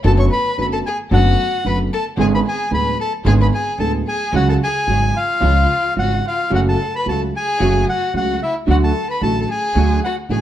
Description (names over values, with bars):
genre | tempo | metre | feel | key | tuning
tango | 112 BPM | 4/4 | rubato | F# minor | A4 = 439 Hz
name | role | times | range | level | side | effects
warm violin | second line | 0.0-10.4 s | E4 to C#5 | -24 LUFS | left 5 dB | none
dark grand piano | accompaniment | 0.0-10.4 s | D1 to G#4 | -20 LUFS | right 3 dB | none
muted studio string section | stabs | 0.0-10.4 s | G#3 to A4 | -30 LUFS | right 2 dB | none
upright bass | bass | 0.0-10.4 s | F#1 to D2 | -18 LUFS | equal | none
bandoneon | melody | 0.1-10.4 s | E5 to C#6 | -21 LUFS | equal | none
room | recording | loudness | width
moderate large studio reverb, RT60 1.0 s | dark, warm production | -15 LUFS | side -11 dB against mid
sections
0.0-10.4 A section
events
none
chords
0.0 Bm7/F#; 2.2 G#dim; 4.3 C#sus4; 5.4 C#; 6.5 F#m; 8.7 D